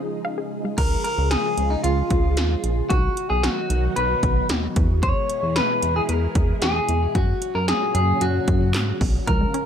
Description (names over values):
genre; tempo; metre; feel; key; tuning
synth-pop; 113 BPM; 4/4; straight; F# major; A4 = 440 Hz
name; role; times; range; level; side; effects
electric guitar at the edge of break-up; melody; 0.0-9.7 s; D#4 to E#5; -24 LUFS; left 1 dB; none
soft string machine; sustained chords; 0.0-9.7 s; G#2 to G#4; -28 LUFS; left 1 dB; phaser, ensemble chorus
wide unison pluck; arpeggios; 0.0-0.7, 9.3-9.6 s; E#3 to E#5; -29 LUFS; equal; ping-pong delay
chorused synth bass; bass; 0.8-9.5 s; A#1 to G#2; -22 LUFS; equal; none
80s electronic pad drums; drums; 0.8-9.7 s; crash cymbal, handclaps, hi-hat, kick drum, snare drum; -23 LUFS; equal; none
room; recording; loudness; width
little or no reverb; none; -19 LUFS; side -8 dB against mid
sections
0.8-9.7 A section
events
break 0.0-0.8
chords
0.0 C#; 2.9 B; 4.8 E; 7.2 F#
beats
0.25 | 0.78 1.31 1.84 2.37 | 2.90 3.43 3.96 4.50 | 5.03 5.56 6.09 6.62 | 7.15 7.68 8.21 8.74 | 9.28